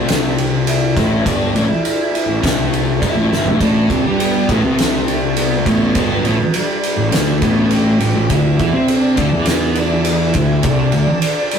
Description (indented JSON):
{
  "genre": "stoner and doom metal",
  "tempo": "102 BPM",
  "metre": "4/4",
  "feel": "straight",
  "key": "unclear",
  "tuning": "A4 = 439 Hz",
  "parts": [
    { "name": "octave-fuzz lead guitar", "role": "melody", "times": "0.0-11.6 s", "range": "G3 to G4", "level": "-22 LUFS", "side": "right 1 dB", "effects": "distortion" },
    { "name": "thick fuzz guitar", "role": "riff", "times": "0.0-11.1 s", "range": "G2 to C4", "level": "-18 LUFS", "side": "left 4 dB", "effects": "distortion" },
    { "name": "fuzz picked electric bass", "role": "bass", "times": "0.0-11.1 s", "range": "G1 to C3", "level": "-22 LUFS", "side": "equal", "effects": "overdrive, tube saturation" },
    { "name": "oversized low-tuned drum kit", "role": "drums", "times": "0.1-11.6 s", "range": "kick drum, ride cymbal, snare drum, toms", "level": "-18 LUFS", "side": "right 1 dB", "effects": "none" },
    { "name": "thick fuzz guitar", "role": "riff", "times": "3.6-11.1 s", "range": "G2 to C4", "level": "-20 LUFS", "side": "right 5 dB", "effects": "distortion" }
  ],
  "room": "moderate studio reverb, RT60 0.6 s",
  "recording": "rough rehearsal-room recording, warm saturation",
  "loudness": "-13 LUFS",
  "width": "side -7 dB against mid",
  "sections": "0.0-11.6 A section",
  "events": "drum fill 3.3",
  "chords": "0.0 A5; 8.3 D5"
}